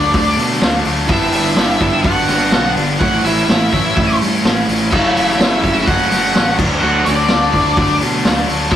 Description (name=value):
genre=classic rock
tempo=126 BPM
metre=4/4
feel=straight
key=unclear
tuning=A4 = 440 Hz
part: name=octave-fuzz lead guitar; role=melody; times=0.0-8.8 s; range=D5 to F#5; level=-19 LUFS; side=left 1 dB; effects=distortion
part: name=octave-fuzz lead guitar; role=second line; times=0.0-8.8 s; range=D4 to F#4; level=-21 LUFS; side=right 2 dB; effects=distortion
part: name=overdriven electric guitar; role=riff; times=0.0-8.8 s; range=F#2 to E4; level=-22 LUFS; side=right 3 dB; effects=none
part: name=tight distorted guitar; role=riff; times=0.0-8.8 s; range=F#2 to E4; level=-21 LUFS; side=left 4 dB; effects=distortion
part: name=tight distorted guitar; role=riff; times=0.0-8.8 s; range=F#2 to E4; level=-22 LUFS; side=equal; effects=distortion
part: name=fuzz fingered electric bass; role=bass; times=0.0-8.8 s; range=F#1 to B2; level=-22 LUFS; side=equal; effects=overdrive
part: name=vintage drum kit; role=drums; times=0.1-8.8 s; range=crash cymbal, hi-hat, kick drum, snare drum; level=-16 LUFS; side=equal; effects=none
room=moderate small room reverb, RT60 0.5 s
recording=rough rehearsal-room recording, warm saturation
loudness=-12 LUFS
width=side -10 dB against mid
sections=0.0-8.8 A section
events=none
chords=0.0 D; 1.1 G; 3.0 A; 4.9 F#m7; 6.6 D